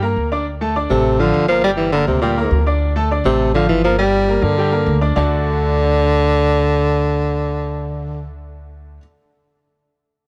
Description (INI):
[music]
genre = latin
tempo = 204 BPM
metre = 4/4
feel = straight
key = unclear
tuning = A4 = 439 Hz
[part]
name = bright grand piano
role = accompaniment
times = 0.0-9.0 s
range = D3 to D6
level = -24 LUFS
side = equal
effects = none
[part]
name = upright bass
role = bass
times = 0.0-9.0 s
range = G1 to G2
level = -23 LUFS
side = equal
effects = none
[part]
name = breathy tenor saxophone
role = melody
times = 0.9-8.3 s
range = Bb2 to G3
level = -19 LUFS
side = equal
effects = none
[sound]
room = light reverb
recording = none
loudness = -17 LUFS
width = mono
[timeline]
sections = 0.5-5.2 A section; 5.2-7.5 B section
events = none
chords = 0.5 Dm; 1.6 Gm; 2.8 Dm; 4.0 Gm; 5.2 D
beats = 0.17 | 0.47 0.76 1.05 1.34 | 1.64 1.93 2.23 2.52 | 2.81 3.11 3.40 3.69 | 3.99 4.28 4.57 4.87 | 5.16 5.46 5.75 6.04 | 6.34 6.63 6.92 7.22